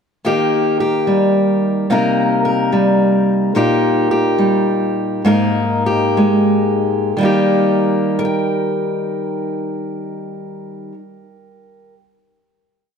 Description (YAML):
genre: folk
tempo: 58-72 BPM (dotted quarters)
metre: 6/8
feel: straight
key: Eb major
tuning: A4 = 441 Hz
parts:
  - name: fingerpicked steel-string acoustic guitar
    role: solo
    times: 0.2-12.0 s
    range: Ab2 to G5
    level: -14 LUFS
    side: equal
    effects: none
room: moderate concert hall reverb, RT60 2.2 s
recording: none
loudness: -14 LUFS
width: side -6 dB against mid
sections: 0.2-7.2 breakdown; 7.2-11.3 final chord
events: slowing down 3.5-7.2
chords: 0.2 Eb; 1.9 Cm7; 3.5 Eb/Bb; 5.2 Absus2; 7.2 Eb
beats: | 0.23 1.06 | 1.89 2.72 | 3.55 4.38 | 5.25 6.16 | 7.15 8.19 | 9.22 10.26